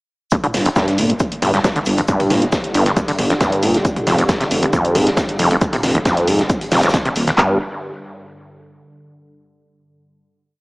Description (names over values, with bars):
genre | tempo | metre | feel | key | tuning
driving peak-time techno | 136 BPM | 4/4 | straight | unclear | A4 = 441 Hz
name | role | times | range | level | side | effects
overdriven acid bass | riff | 0.3-7.6 s | Eb2 to D3 | -18 LUFS | equal | distortion, sidechain pumping, tape echo
deep dark ambient pad | drone | 1.8-7.4 s | G2 to D3 | -28 LUFS | equal | none
oversized low-tuned drum kit | drums | 0.3-7.4 s | hi-hat, shaker, snare drum | -25 LUFS | equal | sidechain pumping on hats, high-pass filter on hats, high-pass filter on snare, sidechain pumping on perc, high-pass filter on perc, high-pass filter on room
punchy analog drum machine | drums | 0.3-7.4 s | hi-hat, toms | -24 LUFS | equal | none
techno drum kit | drums | 0.3-7.5 s | handclaps, kick drum | -19 LUFS | equal | none
detuned saw bass | bass | 0.5-7.6 s | Eb1 to G1 | -19 LUFS | equal | sidechain pumping
room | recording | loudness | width
moderate plate reverb, RT60 1.7 s | small speaker sound | -14 LUFS | side -26 dB against mid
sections
0.3-7.4 groove; 7.4-9.1 final chord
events
none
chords
0.3 G5; 3.8 N.C.